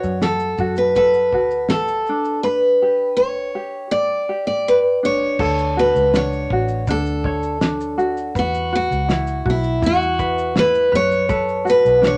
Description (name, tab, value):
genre	acoustic pop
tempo	81 BPM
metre	4/4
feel	straight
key	D major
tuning	A4 = 440 Hz
part	picked steel-string acoustic guitar	melody	0.0-12.2 s	E4 to D5	-20 LUFS	equal	none
part	tenor ukulele	accompaniment	0.0-12.2 s	D4 to D5	-26 LUFS	equal	none
part	vintage muted fingered electric bass	bass	0.0-12.2 s	A1 to F#2	-27 LUFS	equal	none
part	cloth-damped thuddy drum kit	drums	0.0-12.2 s	crash cymbal, kick drum, shaker, snare drum	-27 LUFS	equal	none
room	moderate small room reverb, RT60 0.6 s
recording	none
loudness	-19 LUFS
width	mono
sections	0.0-5.4 A section; 5.4-12.2 B section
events	none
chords	0.0 Bm7/F#; 2.4 G; 5.4 Dmaj7; 8.3 Esus2; 10.9 Bm7